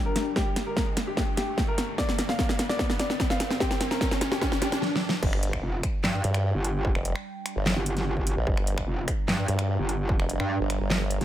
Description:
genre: heavy wobble dubstep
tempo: 148 BPM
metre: 4/4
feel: half-time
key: G minor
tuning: A4 = 439 Hz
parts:
  - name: evolving wavetable pad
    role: sustained chords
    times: 0.0-11.2 s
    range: G2 to Bb5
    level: -37 LUFS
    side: right 2 dB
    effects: chorus, built-in reverb, phaser, sidechain pumping
  - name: riser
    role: sound effects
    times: 0.0-4.8 s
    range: none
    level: -33 LUFS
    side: equal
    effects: none
  - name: clear grand piano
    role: melody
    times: 0.1-4.8 s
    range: G4 to F5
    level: -33 LUFS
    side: left 2 dB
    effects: tape echo
  - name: dubstep drum kit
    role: drums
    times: 0.2-11.2 s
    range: crash cymbal, finger snaps, handclaps, hi-hat, snare drum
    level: -28 LUFS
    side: equal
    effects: none
  - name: electronic kick drum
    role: drums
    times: 0.4-10.2 s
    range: none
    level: -28 LUFS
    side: equal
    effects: distortion
  - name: formant-sweep wobble bass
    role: bass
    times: 5.2-11.2 s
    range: F1 to G2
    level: -26 LUFS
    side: equal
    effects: chorus, overdrive
  - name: metallic wobble bass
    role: bass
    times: 5.6-11.2 s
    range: F1 to G2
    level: -27 LUFS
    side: equal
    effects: distortion, chorus, overdrive
room: little or no reverb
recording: none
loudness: -24 LUFS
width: side -12 dB against mid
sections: 0.0-5.2 A section; 5.2-11.2 B section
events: build-up 0.0-5.2; drum fill 0.0-4.8, 4.8-5.2; riser 0.0-4.8; filter sweep on ambient pad 0.0-5.2; drop 5.2-11.2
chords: 0.0 G5

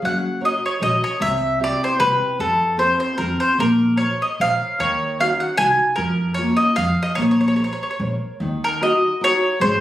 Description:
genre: italian folk, Italian serenade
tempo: 151 BPM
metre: 3/4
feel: swing 54% on 8ths, rubato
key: Bb minor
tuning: A4 = 441 Hz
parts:
  - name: nylon-string guitar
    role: accompaniment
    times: 0.0-9.8 s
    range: C3 to Db5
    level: -22 LUFS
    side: equal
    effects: none
  - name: upright bass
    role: bass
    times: 0.0-9.8 s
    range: Gb1 to F2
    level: -27 LUFS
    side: equal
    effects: none
  - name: mandolin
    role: melody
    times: 0.1-9.8 s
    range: A4 to Ab5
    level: -19 LUFS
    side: equal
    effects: plate reverb
room: wet small room reverb, RT60 0.5 s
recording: recorded on a phone in the room, studio reverb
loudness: -17 LUFS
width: side -13 dB against mid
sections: 0.0-8.4 A section; 8.4-9.8 B section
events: none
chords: 0.0 Gb; 1.2 C; 2.4 F; 3.6 Bbmadd9; 4.8 Ebm7; 6.0 Bbm/F; 6.8 Ebsus2/F; 7.2 Bbmadd9; 8.4 Ebm

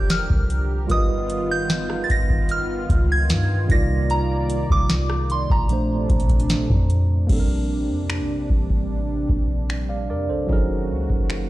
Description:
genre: contemporary R&B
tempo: 75 BPM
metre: 4/4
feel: straight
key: Bb major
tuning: A4 = 440 Hz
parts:
  - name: soft synth bell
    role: melody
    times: 0.0-6.5 s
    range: Bb5 to A#6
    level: -27 LUFS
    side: right 2 dB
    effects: chorus, tape echo
  - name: mellow tine electric piano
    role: accompaniment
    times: 0.0-11.5 s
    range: Bb2 to F5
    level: -27 LUFS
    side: right 2 dB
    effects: medium stereo tremolo
  - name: warm analog pad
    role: sustained chords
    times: 0.0-11.5 s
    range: C3 to D5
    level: -29 LUFS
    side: equal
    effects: chorus, sidechain pumping
  - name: soft 808-style bass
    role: bass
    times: 0.0-11.5 s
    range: F1 to G2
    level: -23 LUFS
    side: equal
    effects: none
  - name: booming analog drum machine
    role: drums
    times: 0.1-11.5 s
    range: crash cymbal, finger snaps, hi-hat, kick drum, rim click, snare drum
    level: -21 LUFS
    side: equal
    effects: vintage 12-bit sampler grit
room: little or no reverb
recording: played on a big sound system in a bare room, stone room reverb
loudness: -19 LUFS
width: side -16 dB against mid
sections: 0.0-7.3 A section; 7.3-11.5 B section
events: none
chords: 0.0 Bb6/F; 0.9 G7alt; 3.7 Cm11; 5.7 Bbmaj9; 7.3 Bb69; 10.5 Gb6

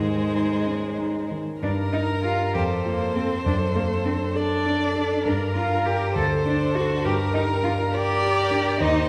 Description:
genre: quick classical-period movement for piano quartet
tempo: 67 BPM (dotted quarters)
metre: 6/8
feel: rubato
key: G minor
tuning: A4 = 440 Hz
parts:
  - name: warm violin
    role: melody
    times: 0.0-9.1 s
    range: Bb4 to D5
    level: -32 LUFS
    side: equal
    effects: none
  - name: dark violin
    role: second line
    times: 0.0-9.1 s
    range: Ab4 to Eb5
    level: -33 LUFS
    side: equal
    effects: none
  - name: warm cello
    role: second line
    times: 0.0-9.1 s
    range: Ab3 to A4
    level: -28 LUFS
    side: equal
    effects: none
  - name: warm concert grand piano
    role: accompaniment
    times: 0.0-9.1 s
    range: D2 to Bb4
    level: -27 LUFS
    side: equal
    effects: none
room: wet scoring stage reverb, RT60 1.8 s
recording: heard from further back in the room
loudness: -24 LUFS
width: mono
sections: 0.0-1.6 A section; 1.6-9.1 B section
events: none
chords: 0.0 Ab; 1.6 Gm; 2.5 F; 3.5 D/F#; 5.3 Gm; 6.2 D; 7.0 Gm

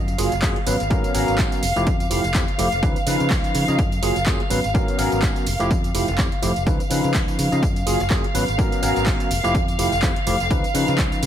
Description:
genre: filtered disco house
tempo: 125 BPM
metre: 4/4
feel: swing 56% on 16ths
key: Db mixolydian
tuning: A4 = 440 Hz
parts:
  - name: clear studio violin section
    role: sustained chords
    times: 0.0-11.3 s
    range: F5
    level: -25 LUFS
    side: equal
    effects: sidechain pumping, low-pass filter
  - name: modern bright fingered electric bass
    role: bass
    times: 0.0-11.3 s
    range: F1 to Db3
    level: -25 LUFS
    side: equal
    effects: sidechain pumping, low-pass filter
  - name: punchy analog drum machine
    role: drums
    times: 0.1-11.3 s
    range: handclaps, hi-hat, tambourine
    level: -28 LUFS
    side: right 2 dB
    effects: overdrive, sidechain pumping on hats, sidechain pumping on perc, sidechain pumping on cymbals
  - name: overdriven tine electric piano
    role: accompaniment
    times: 0.2-11.3 s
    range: F3 to Eb5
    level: -24 LUFS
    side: equal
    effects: phaser, sidechain pumping, low-pass filter
  - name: electronic kick drum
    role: drums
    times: 0.4-11.1 s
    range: none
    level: -22 LUFS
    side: equal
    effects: overdrive
room: light reverb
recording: none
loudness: -18 LUFS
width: side -10 dB against mid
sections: 0.0-11.3 A section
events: none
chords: 0.0 Gbmaj9; 0.7 Abm11; 1.6 Fmaj9; 2.8 Db9; 3.8 Gbmaj9; 4.5 Abm11; 5.5 Fmaj9; 6.7 Db9; 7.6 Gbmaj9; 8.3 Abm11; 9.3 Fmaj9; 10.5 Db9

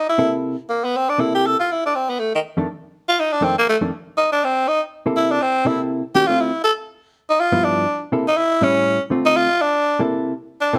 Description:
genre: jazz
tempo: 242 BPM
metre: 4/4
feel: swing 59% on 8ths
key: C mixolydian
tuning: A4 = 440 Hz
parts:
  - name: growling tenor saxophone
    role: melody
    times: 0.0-10.8 s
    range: Eb3 to A4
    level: -19 LUFS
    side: equal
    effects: none
  - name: hollow-body jazz guitar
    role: accompaniment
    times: 0.2-10.8 s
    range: F2 to A4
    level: -23 LUFS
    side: equal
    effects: none
room: moderate studio reverb, RT60 0.9 s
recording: none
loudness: -19 LUFS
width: mono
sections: 0.0-10.1 A section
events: tenor saxophone solo 0.0-10.8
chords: 0.2 C6; 2.2 F6; 4.2 C6; 6.1 Dm7; 7.1 G6; 8.1 C6; 8.6 A7; 9.1 Dm7; 9.6 C13

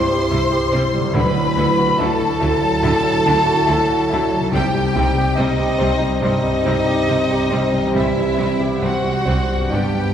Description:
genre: cinematic, emotional film score for orchestra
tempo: 71 BPM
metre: 4/4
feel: rubato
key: unclear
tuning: A4 = 443 Hz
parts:
  - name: warm symphonic violin section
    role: melody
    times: 0.0-10.1 s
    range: Eb5 to C6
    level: -24 LUFS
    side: left 2 dB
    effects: none
  - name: clear symphonic violin section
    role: second line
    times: 0.0-10.1 s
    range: Eb4 to C5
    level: -24 LUFS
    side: equal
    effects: none
  - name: mellow small flute group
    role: second line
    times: 0.0-10.1 s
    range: Eb5 to C6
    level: -25 LUFS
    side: left 1 dB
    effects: none
  - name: warm concert grand piano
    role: accompaniment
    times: 0.0-10.1 s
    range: C2 to E5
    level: -22 LUFS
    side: right 1 dB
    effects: none
  - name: mellow French horn section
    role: sustained chords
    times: 0.0-10.1 s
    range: F#3 to E4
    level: -22 LUFS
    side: equal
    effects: none
  - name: concert harp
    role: arpeggios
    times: 0.0-10.1 s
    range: G2 to E5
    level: -29 LUFS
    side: left 2 dB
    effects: none
  - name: bright symphonic viola section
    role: accompaniment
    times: 0.3-9.8 s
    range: F#3 to E4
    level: -28 LUFS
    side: right 2 dB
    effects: none
  - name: rich symphonic cello section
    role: bass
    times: 0.3-9.8 s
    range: G2 to D3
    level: -27 LUFS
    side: right 2 dB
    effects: none
  - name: warm symphonic double bass section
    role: bass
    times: 0.3-9.8 s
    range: G1 to D2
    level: -26 LUFS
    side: right 1 dB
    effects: none
  - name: timpani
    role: percussion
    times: 1.2-2.4, 9.7-10.1 s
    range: G2 to D3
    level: -29 LUFS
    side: right 1 dB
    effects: none
room: wet scoring stage reverb, RT60 2.0 s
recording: heard from further back in the room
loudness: -15 LUFS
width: side -9 dB against mid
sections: 0.0-10.1 A section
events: timpani fill 9.7-10.1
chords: 0.0 C; 1.2 Dadd9; 4.5 Cm; 7.9 C

